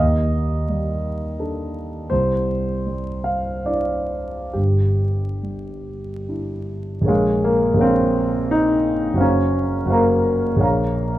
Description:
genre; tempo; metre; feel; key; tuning
classical, impressionist solo piano; 65-90 BPM; 3/4; rubato; Bb minor from 7.1 s; A4 = 440 Hz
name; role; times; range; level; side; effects
warm grand piano; solo; 0.0-11.2 s; Gb1 to Bb5; -18 LUFS; equal; none
room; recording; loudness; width
moderate scoring stage reverb, RT60 1.8 s; close, detailed microphones, vinyl crackle; -18 LUFS; side -14 dB against mid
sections
0.0-7.1 A section; 7.1-11.2 B section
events
none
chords
0.0 Ebmaj7#11; 2.1 Cadd9; 4.5 G5; 7.1 Bbm9; 9.2 Gbmaj7#11; 10.6 Bbm7

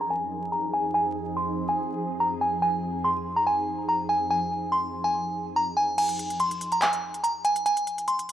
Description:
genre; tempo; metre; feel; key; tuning
hip hop, trap; 143 BPM; 4/4; half-time; F minor; A4 = 439 Hz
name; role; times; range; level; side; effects
delicate synth tine bell; melody; 0.0-8.3 s; Ab5 to C6; -24 LUFS; equal; chorus, low-pass filter, analog delay
ethereal airy pad; sustained chords; 0.0-5.9 s; F2 to Ab4; -33 LUFS; right 1 dB; ensemble chorus, built-in reverb, low-pass filter
trap drum kit; drums; 6.0-8.3 s; crash cymbal, handclaps, hi-hat; -32 LUFS; equal; overdrive
room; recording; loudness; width
light reverb; dry, gritty hardware recording, vinyl crackle; -24 LUFS; side -11 dB against mid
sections
0.0-6.0 A section; 6.0-8.3 B section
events
filter sweep 0.0-6.0; kick muted 6.0-8.3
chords
0.0 Fm7; 6.0 N.C.

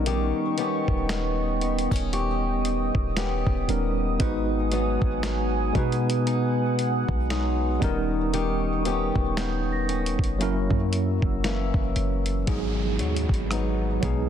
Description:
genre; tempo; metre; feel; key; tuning
contemporary R&B; 58 BPM; 4/4; swing 58% on 16ths; unclear; A4 = 440 Hz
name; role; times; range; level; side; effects
bright tine electric piano; accompaniment; 0.0-14.3 s; F#3 to B4; -28 LUFS; right 1 dB; medium stereo tremolo
deep dark ambient pad; sustained chords; 0.0-14.3 s; B3 to E6; -32 LUFS; right 2 dB; chorus, built-in reverb
fingerpicked old ladder-braced acoustic guitar; arpeggios; 0.0-14.3 s; F#2 to G4; -31 LUFS; left 7 dB; ping-pong delay
warm 808-style bass; bass; 0.0-14.3 s; D#1 to B2; -27 LUFS; equal; none
dusty soul sampler-style drum kit; drums; 0.1-14.3 s; hi-hat, kick drum, rim click, snare drum; -28 LUFS; equal; none
large celesta; texture; 2.1-10.8 s; C#6 to A#6; -39 LUFS; right 6 dB; ping-pong delay
downlifter; sound effects; 12.5-14.3 s; none; -36 LUFS; right 1 dB; none
room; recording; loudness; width
little or no reverb; dense, heavily limited modern master; -22 LUFS; side -9 dB against mid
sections
0.0-12.5 A section; 12.5-14.3 B section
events
none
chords
0.0 D#7b13; 4.2 G#m7; 5.8 B6; 7.8 D#7b13; 10.4 F#7; 12.5 G#m7

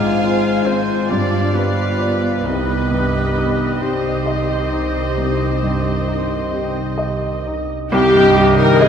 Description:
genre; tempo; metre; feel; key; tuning
classical, romantic movement for piano and orchestra; 44 BPM (dotted quarters); 12/8; rubato; C minor; A4 = 438 Hz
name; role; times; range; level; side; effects
warm baby grand piano; melody; 0.0-8.9 s; C2 to Eb5; -20 LUFS; equal; none
warm symphonic violin section; melody; 0.0-8.9 s; G4 to Ab5; -28 LUFS; left 2 dB; none
clear oboe; second line; 0.0-8.9 s; B4 to G5; -29 LUFS; right 1 dB; none
mellow clarinet; second line; 0.0-8.9 s; G4 to Bb4; -29 LUFS; left 1 dB; none
mellow large flute ensemble; second line; 0.0-7.5 s; B4 to F5; -30 LUFS; equal; none
warm symphonic violin section; second line; 0.0-8.9 s; G4 to F5; -28 LUFS; left 3 dB; none
dark symphonic viola section; accompaniment; 0.0-8.9 s; F4 to Eb5; -22 LUFS; left 1 dB; none
mellow bassoon; accompaniment; 0.0-8.9 s; Eb3 to F3; -29 LUFS; right 1 dB; none
mellow French horn section; sustained chords; 0.0-8.9 s; G3 to G4; -29 LUFS; left 4 dB; none
dark chamber cello section; bass; 0.0-8.9 s; C3 to F4; -26 LUFS; right 4 dB; none
dark studio double bass section; bass; 0.0-8.9 s; G1 to C2; -23 LUFS; right 2 dB; none
bright trombone section; sustained chords; 7.9-8.9 s; Eb3 to G3; -24 LUFS; right 3 dB; none
clear trumpet; stabs; 7.9-8.9 s; Eb5; -23 LUFS; right 2 dB; none
room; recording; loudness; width
wet scoring stage reverb, RT60 1.8 s; heard from further back in the room; -15 LUFS; side -8 dB against mid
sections
0.0-7.9 A section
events
none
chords
0.0 Fm/Ab; 1.1 G7; 2.5 Cm

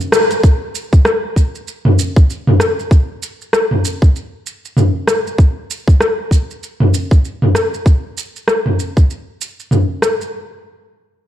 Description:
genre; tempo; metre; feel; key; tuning
downtempo; 97 BPM; 4/4; swing 59% on 16ths; none; none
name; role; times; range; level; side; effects
deep house drum kit; drums; 0.0-10.3 s; hi-hat, rim click, shaker, toms; -14 LUFS; equal; overdrive
electronic kick drum; drums; 0.4-9.1 s; none; -9 LUFS; equal; none
room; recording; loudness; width
light reverb; dark, warm production; -12 LUFS; side -12 dB against mid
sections
0.4-10.3 A section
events
band accent 0.1-0.4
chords
none

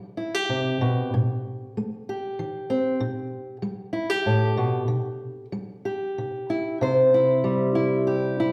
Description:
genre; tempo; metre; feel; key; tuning
folk, solo fingerstyle acoustic guitar; 95 BPM; 3/4; rubato; C major; A4 = 439 Hz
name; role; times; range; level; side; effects
fingerpicked steel-string acoustic guitar; solo; 0.0-8.5 s; A2 to C5; -25 LUFS; equal; none
room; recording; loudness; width
wet recital hall reverb, RT60 1.4 s; recorded in a church or concert hall; -25 LUFS; mono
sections
0.0-6.8 A section; 6.8-8.5 B section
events
none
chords
0.0 C; 1.1 Am7; 3.0 G/B; 4.9 C

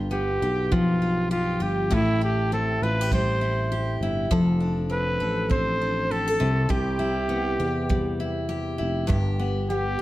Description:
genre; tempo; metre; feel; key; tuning
acoustic pop; 100 BPM; 4/4; swing 60% on 16ths; G mixolydian; A4 = 440 Hz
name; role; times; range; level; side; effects
picked steel-string acoustic guitar; accompaniment; 0.0-10.0 s; G2 to A4; -25 LUFS; left 1 dB; none
sustaining fretless electric bass; bass; 0.0-10.0 s; F1 to E2; -29 LUFS; equal; none
growling trumpet; melody; 0.1-10.0 s; E4 to C5; -26 LUFS; right 1 dB; plate reverb
kick drum; drums; 0.7-9.3 s; none; -26 LUFS; right 1 dB; none
room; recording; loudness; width
moderate studio reverb, RT60 0.8 s; none; -22 LUFS; side -16 dB against mid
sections
0.0-10.0 A section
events
none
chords
0.0 G7; 1.9 Am7; 4.3 F6; 6.4 Cmaj7; 9.1 G

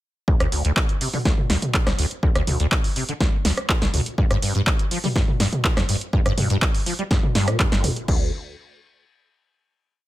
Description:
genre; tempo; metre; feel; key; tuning
acid house; 123 BPM; 4/4; straight; D minor; A4 = 440 Hz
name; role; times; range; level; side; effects
acid bass, saw; riff; 0.3-8.3 s; G1 to G3; -24 LUFS; equal; ensemble chorus, sidechain pumping
electronic kick drum; drums; 0.3-8.2 s; none; -21 LUFS; equal; none
punchy analog drum machine; drums; 0.4-8.2 s; crash cymbal, handclaps, hi-hat, rim click, snare drum, toms; -23 LUFS; equal; none
room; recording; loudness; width
light reverb; none; -19 LUFS; side -15 dB against mid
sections
0.3-8.1 drop; 8.1-10.0 final note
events
drop 0.3-8.1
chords
none

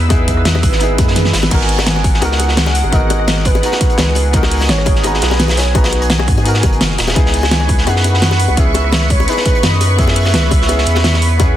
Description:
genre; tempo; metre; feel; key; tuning
liquid drum and bass; 170 BPM; 4/4; straight; G# minor; A4 = 440 Hz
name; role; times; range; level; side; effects
clear concert grand piano; accompaniment; 0.0-11.6 s; B3 to A#5; -21 LUFS; left 2 dB; ping-pong delay
lush unison pad; sustained chords; 0.0-11.6 s; G#4 to E6; -22 LUFS; right 2 dB; chorus, phaser
saturated sub bass; bass; 0.0-11.6 s; D#1 to G#2; -16 LUFS; equal; none
crunchy breakbeat drum kit; drums; 0.1-11.5 s; hi-hat, snare drum; -20 LUFS; equal; high-pass filter on hats, high-pass filter on snare, high-pass filter on room
electronic kick drum; drums; 0.1-11.5 s; none; -15 LUFS; equal; none
pop drum kit; drums; 0.1-11.5 s; crash cymbal, hi-hat, rim click, snare drum; -18 LUFS; equal; none
bongos; percussion; 0.1-11.5 s; none; -24 LUFS; left 8 dB; none
swell; sound effects; 0.9-1.5 s; none; -25 LUFS; right 2 dB; none
warm velvety synth lead; melody; 1.5-11.6 s; B4 to G#5; -22 LUFS; right 1 dB; chorus, ping-pong delay
room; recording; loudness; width
studio reverb; dense, heavily limited modern master; -11 LUFS; side -12 dB against mid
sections
0.0-11.6 A section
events
swell 0.9-1.5; drum fill 1.2-1.5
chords
0.0 C#m7 (rootless); 1.5 G#m7; 7.2 C#m7

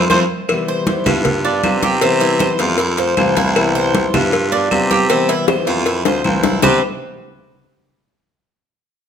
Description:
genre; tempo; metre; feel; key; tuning
latin, Cuban son and guajira; 156 BPM; 4/4; straight; C major; A4 = 440 Hz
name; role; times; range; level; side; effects
nylon-string guitar; accompaniment; 0.0-6.8 s; C3 to F4; -21 LUFS; left 4 dB; none
Cuban tres; arpeggios; 0.0-6.8 s; C4 to C5; -19 LUFS; right 2 dB; none
raspy baritone saxophone; bass; 0.0-6.8 s; C2 to C3; -19 LUFS; right 1 dB; none
claves; percussion; 0.1-6.7 s; none; -26 LUFS; right 2 dB; none
congas; percussion; 0.1-6.7 s; none; -22 LUFS; equal; none
cowbell and bongos; percussion; 0.1-6.7 s; none; -21 LUFS; left 4 dB; none
room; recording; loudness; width
moderate large studio reverb, RT60 1.2 s; none; -13 LUFS; side -8 dB against mid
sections
0.5-6.6 A section; 6.6-8.2 B section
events
drum fill 0.0-0.5, 5.5-6.6; band accent 0.0-0.5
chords
0.5 Cmaj7; 1.3 G7; 2.0 Cmaj7; 2.8 Fmaj7; 3.6 Cmaj7; 4.3 G7; 5.1 Cmaj7; 5.9 Fmaj7; 6.6 Cmaj7

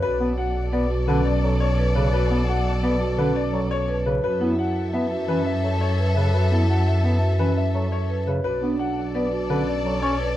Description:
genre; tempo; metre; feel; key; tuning
classical, minimalist pattern music; 171 BPM; 6/4; straight; B minor; A4 = 440 Hz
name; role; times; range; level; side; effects
clear grand piano; melody; 0.0-10.3 s; B4 to F#5; -28 LUFS; left 5 dB; none
clear studio violin section; sustained chords; 0.0-10.4 s; A4 to E5; -31 LUFS; left 3 dB; none
marimba with soft mallets; arpeggios; 0.0-10.4 s; C#4 to C#5; -27 LUFS; right 3 dB; none
rich studio double bass section; bass; 0.0-10.4 s; B1 to F#2; -23 LUFS; equal; none
warm bass clarinet; accompaniment; 0.2-10.2 s; C#3 to C#4; -26 LUFS; equal; none
room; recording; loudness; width
little or no reverb; close, detailed microphones, vinyl crackle; -20 LUFS; side -13 dB against mid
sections
0.0-10.4 A section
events
none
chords
0.0 Bm7; 4.2 F#m7; 8.4 Bm7

